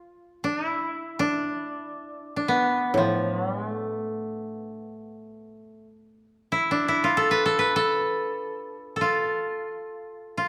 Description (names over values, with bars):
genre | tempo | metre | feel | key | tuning
japanese traditional, Japanese chamber music | free time | none | none | D kumoi | A4 = 440 Hz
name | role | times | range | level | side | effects
koto | melody | 0.0-10.5 s | A3 to B4 | -27 LUFS | equal | none
koto | accompaniment | 0.0-6.3 s | A2 to F3 | -30 LUFS | equal | none
room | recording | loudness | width
wet recital hall reverb, RT60 1.3 s | none | -26 LUFS | mono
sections
0.0-10.5 A section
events
none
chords
none